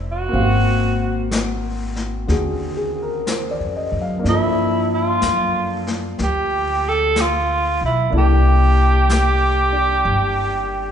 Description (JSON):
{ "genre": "jazz ballad", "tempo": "62 BPM", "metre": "4/4", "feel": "swing 67% on 8ths", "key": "unclear", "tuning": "A4 = 439 Hz", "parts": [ { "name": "warm upright piano", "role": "accompaniment", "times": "0.0-10.9 s", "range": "D3 to F5", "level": "-24 LUFS", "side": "left 2 dB", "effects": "none" }, { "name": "upright bass", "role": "bass", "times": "0.0-10.9 s", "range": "F1 to G2", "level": "-20 LUFS", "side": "equal", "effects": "none" }, { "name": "breathy tenor saxophone", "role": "melody", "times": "0.1-10.9 s", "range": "E4 to A4", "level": "-19 LUFS", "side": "right 2 dB", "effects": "none" }, { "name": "jazz brush drum kit", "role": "drums", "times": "0.3-10.9 s", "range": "brushed snare drum, hi-hat, snare drum", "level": "-28 LUFS", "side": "left 3 dB", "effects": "none" } ], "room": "wet recital hall reverb, RT60 1.6 s", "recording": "recorded in a church or concert hall, nothing above 10.8 kHz", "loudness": "-16 LUFS", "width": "side -8 dB against mid", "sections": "0.0-10.9 A section", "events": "none", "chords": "0.4 Ab13; 4.2 Gm9; 8.1 C13" }